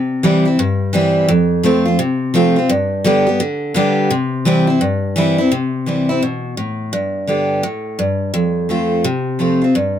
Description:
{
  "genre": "country",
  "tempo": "170 BPM",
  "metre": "4/4",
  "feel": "swing 63% on 8ths",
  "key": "C major",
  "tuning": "A4 = 438 Hz",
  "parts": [
    { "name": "picked steel-string acoustic guitar", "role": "solo", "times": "0.0-10.0 s", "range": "F2 to G4", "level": "-14 LUFS", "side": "equal", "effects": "none" }
  ],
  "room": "little or no reverb",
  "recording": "close, detailed microphones",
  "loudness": "-14 LUFS",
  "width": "side -10 dB against mid",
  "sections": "0.0-5.5 A section; 5.5-10.0 B section",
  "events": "none",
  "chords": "0.0 C; 1.3 F; 2.7 G; 4.1 C; 6.9 G; 8.3 F"
}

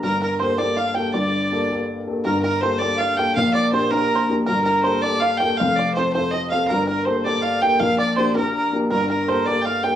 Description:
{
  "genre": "celtic folk",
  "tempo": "108 BPM (dotted quarters)",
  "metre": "6/8",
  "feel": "straight",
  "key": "G minor",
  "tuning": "A4 = 440 Hz",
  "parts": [
    { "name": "bright fiddle", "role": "melody", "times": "0.0-10.0 s", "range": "Bb4 to G5", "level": "-23 LUFS", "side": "equal", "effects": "plate reverb" },
    { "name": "accordion", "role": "second line", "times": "0.0-10.0 s", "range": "Bb4 to G5", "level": "-26 LUFS", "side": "right 1 dB", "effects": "none" },
    { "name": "bluegrass banjo", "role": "second line", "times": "0.0-10.0 s", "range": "Bb4 to G5", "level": "-26 LUFS", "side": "right 5 dB", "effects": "none" },
    { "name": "dark upright piano", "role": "accompaniment", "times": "0.0-10.0 s", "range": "F1 to A4", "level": "-22 LUFS", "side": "left 2 dB", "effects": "none" }
  ],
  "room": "wet studio reverb, RT60 0.6 s",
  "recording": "worn, warbling old tape, cassette tape, warbly pitch drift, small room ambience",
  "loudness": "-18 LUFS",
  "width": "side -10 dB against mid",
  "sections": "0.0-2.3 A section; 2.3-10.0 A section",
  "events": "none",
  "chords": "0.0 Gmadd9; 3.4 Bb6; 4.5 Gmadd9; 5.6 F; 6.7 Gmadd9; 7.8 Bb6; 8.9 Gmadd9"
}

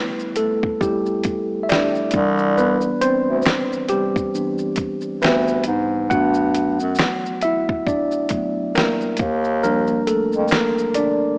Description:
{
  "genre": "lo-fi hip hop",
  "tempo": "68 BPM",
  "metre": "4/4",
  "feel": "swing 59% on 16ths",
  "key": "unclear",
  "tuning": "A4 = 440 Hz",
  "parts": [
    { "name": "mellow tine electric piano", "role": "accompaniment", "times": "0.0-11.4 s", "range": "E3 to F#5", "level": "-19 LUFS", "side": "equal", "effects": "medium stereo tremolo" },
    { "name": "dusty soul sampler-style drum kit", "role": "drums", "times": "0.2-11.2 s", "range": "hi-hat, kick drum, shaker, snare drum", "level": "-22 LUFS", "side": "equal", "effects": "none" },
    { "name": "finger snaps", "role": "percussion", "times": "1.7-10.8 s", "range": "none", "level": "barely audible", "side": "none", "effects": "none" },
    { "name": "breathy bass clarinet", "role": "bass", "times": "2.1-10.5 s", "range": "C2 to Ab2", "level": "-19 LUFS", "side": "equal", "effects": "none" }
  ],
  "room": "moderate lush hall reverb, RT60 2.3 s",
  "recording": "rough home demo mix, small speaker sound",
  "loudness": "-17 LUFS",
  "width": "side -38 dB against mid",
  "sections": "0.0-11.4 A section",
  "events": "tine electric piano solo 0.0-11.4",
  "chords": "0.0 Fmaj9 (rootless); 2.1 Cmaj9; 6.1 Gmaj9; 9.2 Ebmaj9"
}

